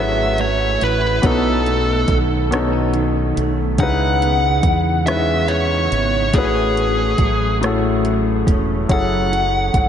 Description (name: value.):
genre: slow six-eight R&B.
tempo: 47 BPM (dotted quarters).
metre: 6/8.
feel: straight.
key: F# dorian.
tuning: A4 = 440 Hz.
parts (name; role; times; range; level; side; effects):
bluesy overdriven lead guitar; melody; 0.0-9.9 s; G#4 to F#5; -20 LUFS; equal; distortion, diffuse ambient delay.
clean electric guitar; second line; 0.0-9.9 s; A2 to G#4; -26 LUFS; right 5 dB; ensemble chorus, diffuse ambient delay.
clear baby grand piano; accompaniment; 0.0-9.9 s; A2 to B4; -21 LUFS; left 3 dB; none.
deep dub fingered electric bass; bass; 0.0-9.9 s; E1 to E2; -21 LUFS; right 1 dB; none.
smooth R&B drum kit; drums; 0.4-9.9 s; hi-hat, kick drum, rim click; -23 LUFS; right 1 dB; none.
room: wet cathedral reverb, RT60 6.0 s.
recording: dreamy mix soaked in reverb, nothing above 10.7 kHz.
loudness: -15 LUFS.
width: side -8 dB against mid.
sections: 0.0-9.9 A section.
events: none.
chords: 0.0 F#m9; 1.2 B9; 3.8 C#m9; 6.3 A6; 8.9 F#m9.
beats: | 1.23 2.51 | 3.79 5.06 | 6.34 7.62 | 8.89.